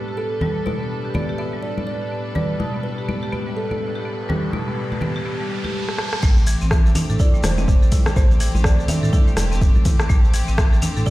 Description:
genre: afro house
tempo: 124 BPM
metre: 4/4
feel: swing 60% on 16ths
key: A minor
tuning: A4 = 439 Hz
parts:
  - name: kalimba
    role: melody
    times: 0.0-11.1 s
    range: G4 to E5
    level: -30 LUFS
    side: right 2 dB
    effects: dub echo
  - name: rich studio string section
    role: sustained chords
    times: 0.0-11.1 s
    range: A2 to B4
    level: -30 LUFS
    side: equal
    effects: sidechain pumping
  - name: marimba with hard mallets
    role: arpeggios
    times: 0.1-11.1 s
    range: B2 to A4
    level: -28 LUFS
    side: left 1 dB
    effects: sidechain pumping, dub echo
  - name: congas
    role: percussion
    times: 0.4-10.9 s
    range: none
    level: -26 LUFS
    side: equal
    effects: none
  - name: riser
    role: sound effects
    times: 3.5-6.2 s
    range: none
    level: -33 LUFS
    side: right 1 dB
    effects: none
  - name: afro-pop drum kit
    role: drums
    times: 5.9-10.9 s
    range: crash cymbal, hi-hat, rim click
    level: -27 LUFS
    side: equal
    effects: none
  - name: warm sub bass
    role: bass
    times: 6.2-11.0 s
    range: E1 to A2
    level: -20 LUFS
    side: equal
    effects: sidechain pumping
  - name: electronic kick drum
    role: drums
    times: 6.2-11.1 s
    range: none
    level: -16 LUFS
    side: equal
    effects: none
  - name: shekere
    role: percussion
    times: 6.2-11.1 s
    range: none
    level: -34 LUFS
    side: left 2 dB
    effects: none
room: light reverb, studio reverb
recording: played on a big sound system in a bare room, stone room reverb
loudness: -17 LUFS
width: side -17 dB against mid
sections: 0.0-6.2 A section; 6.2-11.1 B section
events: riser 3.5-6.2; drum fill 5.9-6.2; drop 6.2-11.1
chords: 0.0 G/A; 6.2 Am7

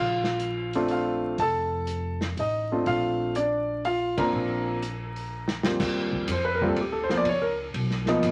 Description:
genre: jazz piano trio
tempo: 122 BPM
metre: 3/4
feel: swing 68% on 8ths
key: Bb major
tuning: A4 = 440 Hz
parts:
  - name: warm concert grand piano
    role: melody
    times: 0.0-8.3 s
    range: Eb2 to Bb5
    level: -28 LUFS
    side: equal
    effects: none
  - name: upright bass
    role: bass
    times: 0.0-8.3 s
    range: F1 to F2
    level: -36 LUFS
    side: equal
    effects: none
  - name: vintage drum kit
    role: drums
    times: 0.2-8.3 s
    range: crash cymbal, hi-hat, kick drum, ride cymbal, snare drum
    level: -35 LUFS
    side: equal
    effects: none
room: moderate studio reverb, RT60 0.8 s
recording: vinyl crackle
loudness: -27 LUFS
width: mono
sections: 0.0-5.8 A section; 5.8-8.3 B section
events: band accent 4.1; drum fill 5.3-5.8; grand piano solo 5.8-8.3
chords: 0.0 Bbmaj9; 1.4 F7; 2.9 Bb; 5.8 Eb69; 7.3 Db13

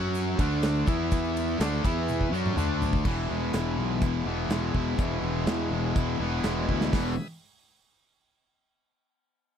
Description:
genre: classic rock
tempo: 124 BPM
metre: 4/4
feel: straight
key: E mixolydian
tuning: A4 = 440 Hz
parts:
  - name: bright tonewheel organ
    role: sustained chords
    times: 0.0-7.3 s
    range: A3 to E5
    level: -43 LUFS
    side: right 2 dB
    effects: none
  - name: distorted electric guitar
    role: riff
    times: 0.0-7.1 s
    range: E2 to F#4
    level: -30 LUFS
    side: left 13 dB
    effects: overdrive
  - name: distorted electric guitar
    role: riff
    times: 0.0-7.1 s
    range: E2 to F#4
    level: -31 LUFS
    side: right 16 dB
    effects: overdrive
  - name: fuzz fingered electric bass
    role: bass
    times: 0.0-7.2 s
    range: E1 to F#2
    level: -31 LUFS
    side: equal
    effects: overdrive
  - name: egg shaker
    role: percussion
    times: 0.1-3.0 s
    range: none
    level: -51 LUFS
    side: right 22 dB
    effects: none
  - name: big rock drum kit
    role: drums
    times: 0.4-7.0 s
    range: crash cymbal, hi-hat, kick drum, ride cymbal, snare drum, toms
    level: -29 LUFS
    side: equal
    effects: none
room: little or no reverb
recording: dry, close 1970s-style studio recording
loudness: -25 LUFS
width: side -8 dB against mid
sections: 0.0-3.1 A section; 3.1-6.9 B section; 6.9-8.9 C section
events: drum fill 2.1-3.1, 6.7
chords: 0.4 D5; 0.9 E5; 1.6 D5; 1.8 E5; 2.3 D5; 3.1 E

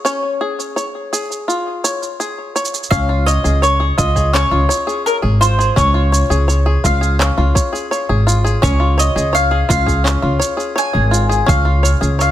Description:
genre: folktronica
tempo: 84 BPM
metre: 4/4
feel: straight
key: Db major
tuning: A4 = 441 Hz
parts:
  - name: bluegrass banjo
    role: arpeggios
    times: 0.0-12.3 s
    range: Db4 to Db5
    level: -19 LUFS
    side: left 1 dB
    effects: ping-pong delay
  - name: electronic shaker and handclaps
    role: drums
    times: 0.1-12.3 s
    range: none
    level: -22 LUFS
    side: right 3 dB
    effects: none
  - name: mandolin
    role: melody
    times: 2.9-12.3 s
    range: Bb4 to Ab5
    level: -18 LUFS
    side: equal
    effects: ping-pong delay
  - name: upright bass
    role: bass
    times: 2.9-12.3 s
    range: Ab1 to Db2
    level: -15 LUFS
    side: equal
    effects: none
  - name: electronic kick drum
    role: drums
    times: 2.9-11.6 s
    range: none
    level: -18 LUFS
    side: equal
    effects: none
room: small room reverb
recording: none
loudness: -13 LUFS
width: side -12 dB against mid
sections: 0.0-2.9 A section; 2.9-12.3 B section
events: none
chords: 0.0 Db

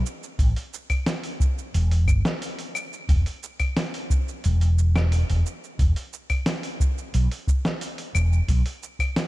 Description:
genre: sunset chillout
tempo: 89 BPM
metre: 4/4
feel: straight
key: E minor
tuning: A4 = 439 Hz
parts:
  - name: dusty soul sampler-style drum kit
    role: drums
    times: 0.1-9.3 s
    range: claves, hi-hat, shaker, snare drum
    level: -29 LUFS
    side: equal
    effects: overdrive, studio reverb
  - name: mellow fretless electric bass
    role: bass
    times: 0.4-8.6 s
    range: E1 to B1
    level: -20 LUFS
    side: equal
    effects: tube saturation, ensemble chorus
  - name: electronic kick drum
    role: drums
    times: 0.4-9.1 s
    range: none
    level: -21 LUFS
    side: equal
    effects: studio reverb
room: little or no reverb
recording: dark, warm production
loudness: -22 LUFS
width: side -18 dB against mid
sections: 0.0-9.3 A section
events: none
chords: none

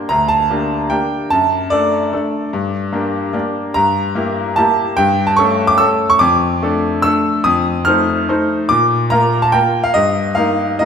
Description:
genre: classical, piano waltz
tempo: 146 BPM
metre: 3/4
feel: uneven beats, rubato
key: G minor, D minor from 3.8 s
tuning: A4 = 440 Hz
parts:
  - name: bright baby grand piano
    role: solo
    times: 0.0-10.9 s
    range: D2 to F6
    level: -13 LUFS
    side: equal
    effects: none
room: wet recital hall reverb, RT60 1.6 s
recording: minimal, uncompressed stereo recording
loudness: -13 LUFS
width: side -7 dB against mid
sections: 0.0-10.9 A section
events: none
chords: 0.0 Gm; 1.3 D/F#; 2.5 Gm; 3.8 Edim/G; 5.0 A7/G; 6.2 Dm/F; 7.5 F7; 8.7 Bb; 10.0 Eb/G

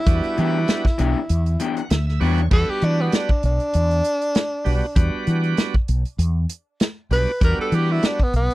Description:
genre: straight-eighth soul blues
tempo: 98 BPM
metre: 4/4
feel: swing 55% on 16ths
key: E minor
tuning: A4 = 440 Hz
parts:
  - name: breathy tenor saxophone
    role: melody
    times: 0.0-8.5 s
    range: B3 to B4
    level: -24 LUFS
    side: equal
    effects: none
  - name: bright tonewheel organ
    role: accompaniment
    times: 0.1-8.2 s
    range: G3 to G5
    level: -27 LUFS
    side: right 4 dB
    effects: slow rotary speaker, overdrive
  - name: mellow fretless electric bass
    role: bass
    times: 0.1-8.5 s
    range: B1 to E3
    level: -19 LUFS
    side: equal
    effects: analog chorus
  - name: warm soul drum kit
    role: drums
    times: 0.1-8.5 s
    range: crash cymbal, hi-hat, kick drum, snare drum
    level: -20 LUFS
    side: equal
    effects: none
  - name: electric guitar through a small old amp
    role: stabs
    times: 0.4-2.4 s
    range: E3 to G4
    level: -24 LUFS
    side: left 6 dB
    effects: none
room: little or no reverb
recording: none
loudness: -18 LUFS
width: side -18 dB against mid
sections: 0.0-2.5 A section; 2.5-8.5 B section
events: tonewheel organ fill 1.3-2.5; tenor saxophone solo 2.5-8.5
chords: 0.0 Em7

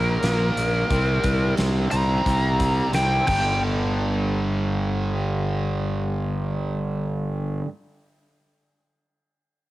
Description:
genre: hard rock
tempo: 88 BPM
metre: 4/4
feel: straight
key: G minor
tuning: A4 = 441 Hz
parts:
  - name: biting lead guitar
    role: melody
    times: 0.0-3.6 s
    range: Bb4 to Bb5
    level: -24 LUFS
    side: equal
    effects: overdrive, cassette tape, tape echo
  - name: cranked stack guitar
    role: riff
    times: 0.0-7.7 s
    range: G2 to C4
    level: -31 LUFS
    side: left 4 dB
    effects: overdrive, harmonic tremolo, cassette tape
  - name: sludgy distorted guitar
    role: riff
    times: 0.0-7.7 s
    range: G2 to C4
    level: -28 LUFS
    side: right 5 dB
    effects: overdrive, cassette tape
  - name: fuzz fingered electric bass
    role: bass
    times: 0.0-7.6 s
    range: G1 to C2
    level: -24 LUFS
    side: equal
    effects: overdrive
  - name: huge arena drum kit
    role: drums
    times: 0.2-3.4 s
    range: crash cymbal, hi-hat, kick drum, snare drum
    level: -29 LUFS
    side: equal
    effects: cassette tape
room: light reverb, small room reverb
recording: home recording on cassette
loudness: -20 LUFS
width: side -17 dB against mid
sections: 0.0-3.6 A section; 3.6-6.3 B section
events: lead electric guitar solo 0.0-3.6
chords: 0.0 Bb5; 0.9 C5; 3.3 G5

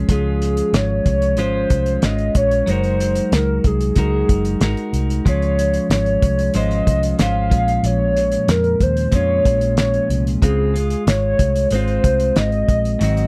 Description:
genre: indie pop, bedroom pop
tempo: 93 BPM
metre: 4/4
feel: straight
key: Db major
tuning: A4 = 442 Hz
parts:
  - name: clean electric guitar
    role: accompaniment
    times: 0.0-13.3 s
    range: Ab2 to C5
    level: -24 LUFS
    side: equal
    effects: subtle chorus, warbly pitch drift
  - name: vintage muted fingered electric bass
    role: bass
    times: 0.0-13.3 s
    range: Gb1 to F2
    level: -23 LUFS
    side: equal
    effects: none
  - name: warbly nostalgic lead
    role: melody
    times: 0.1-13.3 s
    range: Ab4 to F5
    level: -23 LUFS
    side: equal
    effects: tremolo, lush chorus, slapback echo
  - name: cloth-damped thuddy drum kit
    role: drums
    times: 0.1-13.3 s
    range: hi-hat, kick drum, snare drum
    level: -21 LUFS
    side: equal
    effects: none
room: light reverb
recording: none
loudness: -18 LUFS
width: mono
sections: 0.0-13.3 A section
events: none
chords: 0.1 Dbmaj7; 2.7 Gb69; 5.3 Dbmaj7; 7.5 Bbm7; 10.4 Dbmaj7

